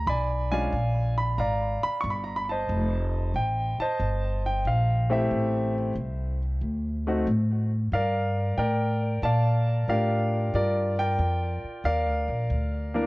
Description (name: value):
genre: jazz piano trio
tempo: 92 BPM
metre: 4/4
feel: swing 68% on 8ths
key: unclear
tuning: A4 = 440 Hz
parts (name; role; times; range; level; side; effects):
- clear concert grand piano; melody; 0.0-13.1 s; E3 to Db6; -27 LUFS; equal; analog delay
- upright bass; bass; 0.0-13.1 s; F1 to Bb2; -26 LUFS; equal; none
room: light reverb, studio ambience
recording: worn, warbling old tape, cassette tape, warbly pitch drift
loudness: -24 LUFS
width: side -21 dB against mid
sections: 0.0-13.1 A section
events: none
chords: 0.1 Bdim7; 2.7 F9; 5.3 Am7; 6.6 D5; 7.9 Gm7